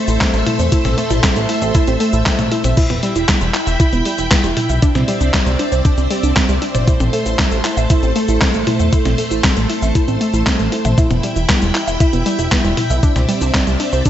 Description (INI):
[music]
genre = italo disco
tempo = 117 BPM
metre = 4/4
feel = straight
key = A minor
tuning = A4 = 440 Hz
[part]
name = string machine, full ensemble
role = sustained chords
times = 0.0-14.1 s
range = A3 to B5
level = -20 LUFS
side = equal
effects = ensemble chorus
[part]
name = warbly dusty pluck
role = arpeggios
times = 0.0-14.1 s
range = G3 to E5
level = -21 LUFS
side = right 1 dB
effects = chorus, tape echo
[part]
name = chorused synth bass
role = bass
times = 0.1-14.0 s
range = E1 to E2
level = -19 LUFS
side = equal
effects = none
[part]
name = detuned 8-bit digital drum machine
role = drums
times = 0.1-14.1 s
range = cabasa, crash cymbal, handclaps, hi-hat, snare drum, toms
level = -19 LUFS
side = left 1 dB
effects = studio reverb, gated reverb
[part]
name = electronic kick drum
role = drums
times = 0.2-14.1 s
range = none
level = -16 LUFS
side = equal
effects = studio reverb
[sound]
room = light reverb, digital ambience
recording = nothing above 7.9 kHz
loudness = -13 LUFS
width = side -11 dB against mid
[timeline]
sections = 0.0-14.1 A section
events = none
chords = 0.0 Am; 2.8 Em; 4.8 Cadd9; 6.9 Am; 11.0 Em; 13.0 Cadd9